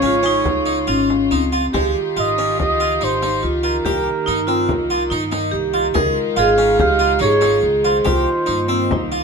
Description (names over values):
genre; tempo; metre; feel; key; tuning
contemporary instrumental, chamber music in an uneven meter; 142 BPM; 5/4; straight; Db lydian; A4 = 441 Hz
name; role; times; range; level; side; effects
warm flugelhorn; melody; 0.0-9.1 s; Bb4 to F5; -21 LUFS; right 2 dB; none
vibraphone with hard mallets; second line; 0.0-9.2 s; C4 to Bb4; -19 LUFS; right 1 dB; none
bright chamber string section; sustained chords; 0.0-9.2 s; Db3 to G4; -26 LUFS; left 3 dB; none
harpsichord; arpeggios; 0.0-9.2 s; Ab3 to Ab4; -22 LUFS; equal; none
upright bass; bass; 0.0-9.2 s; Ab1 to G2; -25 LUFS; right 1 dB; none
frame drum; percussion; 0.5-9.2 s; none; -25 LUFS; left 4 dB; none
room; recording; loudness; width
moderate studio reverb, RT60 0.7 s; none; -15 LUFS; side -5 dB against mid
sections
0.0-1.7 A section; 1.7-9.2 B section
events
none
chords
0.0 Dbmaj7; 1.7 Dbadd9(#11); 3.9 Cm7; 6.0 Dbadd9; 8.1 Cm7